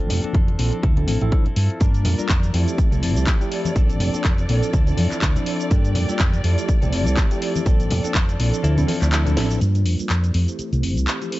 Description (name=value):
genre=filtered disco house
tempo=123 BPM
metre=4/4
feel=swing 56% on 16ths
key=G dorian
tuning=A4 = 440 Hz
part: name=mellow tine electric piano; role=accompaniment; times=0.0-11.4 s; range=F3 to A5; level=-26 LUFS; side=equal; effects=medium stereo tremolo, phaser, vintage 12-bit sampler grit, sidechain pumping, low-pass filter
part: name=direct-recorded clean electric guitar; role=riff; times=0.0-11.4 s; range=E3 to Bb4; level=-32 LUFS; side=left 1 dB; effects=vintage 12-bit sampler grit, sidechain pumping, low-pass filter
part: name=fingered electric bass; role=bass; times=0.0-11.1 s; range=F1 to G2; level=-20 LUFS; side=equal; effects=sidechain pumping, low-pass filter
part: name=house drum kit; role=drums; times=0.0-11.4 s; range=cabasa, handclaps, hi-hat, snare drum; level=-28 LUFS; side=equal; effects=sidechain pumping on hats, sidechain pumping on perc
part: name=congas and egg shaker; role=percussion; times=0.1-9.6 s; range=none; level=-29 LUFS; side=left 2 dB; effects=none
part: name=electronic kick drum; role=drums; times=0.3-8.3 s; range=none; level=-19 LUFS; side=equal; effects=none
part: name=dark symphonic violin section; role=sustained chords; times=1.8-11.4 s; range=C5 to D5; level=-33 LUFS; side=equal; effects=sidechain pumping, low-pass filter
part: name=brilliant trumpet section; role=melody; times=10.1-10.4 s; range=D5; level=-54 LUFS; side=left 1 dB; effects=none
room=little or no reverb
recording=dry, gritty hardware recording, cassette tape, nothing above 7.8 kHz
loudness=-17 LUFS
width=side -17 dB against mid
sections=0.0-9.6 A section; 9.6-11.4 B section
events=kick drops out 8.6-9.6; drum fill 9.4; band accent 9.4; filter sweep 9.6-11.4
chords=0.0 Bbmaj9; 0.8 Dm9; 1.8 Gm7; 2.5 Fmaj7; 3.8 Bbmaj9; 4.7 Dm9; 5.7 Gm7; 6.4 Fmaj7; 7.7 Bbmaj9; 8.6 Dm9; 9.6 Gm7; 10.3 Fmaj7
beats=0.34 0.83 1.32 | 1.81 2.30 2.78 3.27 | 3.76 4.25 4.74 5.22 | 5.71 6.20 6.69 7.17 | 7.66 8.15 8.64 9.13 | 9.61 10.10 10.59 11.08